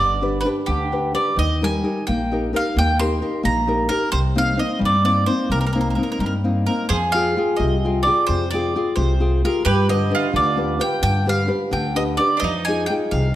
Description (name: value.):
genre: italian folk, Italian serenade.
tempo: 87 BPM (dotted quarters).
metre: 6/8.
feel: rubato.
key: C minor.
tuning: A4 = 441 Hz.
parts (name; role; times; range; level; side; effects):
bowl-back mandolin; melody; 0.0-13.3 s; G4 to C6; -22 LUFS; right 1 dB; none.
nylon-string guitar; accompaniment; 0.0-13.4 s; C3 to G5; -22 LUFS; left 2 dB; none.
upright bass; bass; 0.0-13.4 s; G1 to G2; -22 LUFS; equal; none.
mandolin; second line; 6.9-13.4 s; D4 to Ab4; -26 LUFS; right 4 dB; none.
room: moderate recital hall reverb, RT60 1.5 s.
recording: none.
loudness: -17 LUFS.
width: side -13 dB against mid.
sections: 0.0-13.4 A section.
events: none.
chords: 0.0 G; 1.4 Eb; 4.1 Cm7; 6.9 Fmadd9; 9.7 G; 12.4 Fm7.